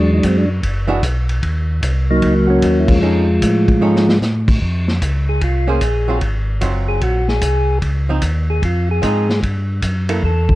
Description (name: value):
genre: soul jazz organ trio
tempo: 150 BPM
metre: 4/4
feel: swing 66% on 8ths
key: unclear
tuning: A4 = 440 Hz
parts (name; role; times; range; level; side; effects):
- percussive tonewheel organ; melody; 0.0-10.6 s; F3 to A4; -16 LUFS; equal; slow rotary speaker
- mellow tonewheel organ; bass; 0.0-10.6 s; F#1 to A2; -17 LUFS; equal; overdrive, chorus vibrato, slow rotary speaker
- vintage drum kit; drums; 0.2-10.6 s; crash cymbal, hi-hat, kick drum, ride cymbal, snare drum; -22 LUFS; equal; none
- archtop guitar, miked and amplified; accompaniment; 0.9-10.2 s; E3 to C5; -22 LUFS; right 3 dB; none
room: light reverb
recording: dark, warm production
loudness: -14 LUFS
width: side -17 dB against mid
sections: 0.0-4.6 A section; 4.6-10.6 B section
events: band accent 2.8; drum fill 3.8-4.2; tonewheel organ solo 4.6-10.6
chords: 0.0 E9; 1.4 Ebm9; 3.0 F7alt; 4.6 Bbm9; 6.2 Ab13; 7.8 Dbmaj9; 9.4 Dadd9 (rootless)